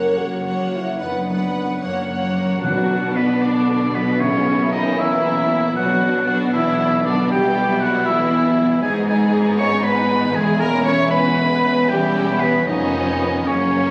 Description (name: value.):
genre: classical, dramatic, fast romantic movement for symphony orchestra.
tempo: 77 BPM (dotted quarters).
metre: 6/8.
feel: rubato.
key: B minor.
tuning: A4 = 441 Hz.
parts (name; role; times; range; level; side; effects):
warm symphonic violin section; melody; 0.0-13.9 s; C#4 to F#5; -30 LUFS; equal; none.
warm symphonic violin section; second line; 0.0-13.9 s; G3 to C#5; -30 LUFS; equal; none.
rich symphonic viola section; accompaniment; 0.0-13.9 s; A#3 to C#5; -28 LUFS; equal; none.
dark French horn section; sustained chords; 0.0-13.9 s; B2 to A#4; -26 LUFS; equal; none.
concert harp; arpeggios; 0.0-13.9 s; E2 to C#6; -31 LUFS; equal; none.
rich symphonic cello section; bass; 0.0-13.9 s; E2 to B2; -25 LUFS; equal; none.
rich symphonic double bass section; bass; 0.0-13.9 s; E1 to B1; -31 LUFS; equal; none.
bright oboe; second line; 2.6-13.9 s; B4 to C#6; -24 LUFS; equal; none.
timpani; percussion; 2.6-5.0 s; B2; -33 LUFS; equal; none.
room: moderate scoring stage reverb, RT60 1.9 s.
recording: recorded on a phone in the room, club reverb, compression.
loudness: -18 LUFS.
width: mono.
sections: 0.0-2.6 A section; 2.6-13.9 B section.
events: none.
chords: 0.0 F#; 1.0 Bm/F#; 1.8 F#; 2.6 Bm; 4.2 A#dim/B; 5.8 Bm; 7.3 Em/B; 8.8 G#m; 10.4 C#m7/E; 11.9 C#m7b5/E; 12.7 C#7/E#.